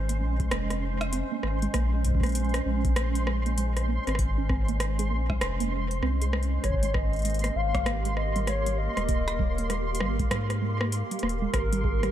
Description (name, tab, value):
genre	IDM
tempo	98 BPM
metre	4/4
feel	swing 62% on 16ths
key	Bb dorian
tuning	A4 = 439 Hz
part	granular cloud pad	sustained chords	0.0-12.1 s	Ab3 to C5	-34 LUFS	right 2 dB	built-in reverb
part	warbly dusty pluck	arpeggios	0.0-12.1 s	G3 to Ab4	-35 LUFS	right 4 dB	chorus, ping-pong delay
part	warm sub bass	bass	0.0-12.1 s	Eb1 to Ab2	-28 LUFS	equal	none
part	flickering grainy texture	texture	0.0-12.1 s	C6	-38 LUFS	right 3 dB	built-in reverb
part	electro analog drum machine	drums	0.1-12.1 s	hi-hat, rim click	-34 LUFS	equal	overdrive, tape echo
part	electronic kick drum	drums	0.4-12.0 s	none	-29 LUFS	equal	overdrive
part	warbly nostalgic lead	melody	6.6-12.1 s	Bb4 to F5	-33 LUFS	left 1 dB	wide subtle chorus, digital delay
room	little or no reverb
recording	none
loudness	-25 LUFS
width	side -11 dB against mid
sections	0.0-12.1 A section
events	filter sweep on synth pluck 0.0-12.1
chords	0.0 Bbm9; 6.6 Abmaj9; 11.5 Fm9/Ab (rootless)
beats	0.52 1.13 | 1.74 2.35 2.96 3.58 | 4.19 4.80 5.41 6.03 | 6.64 7.25 7.86 8.47 | 9.09 9.70 10.31 10.92 | 11.54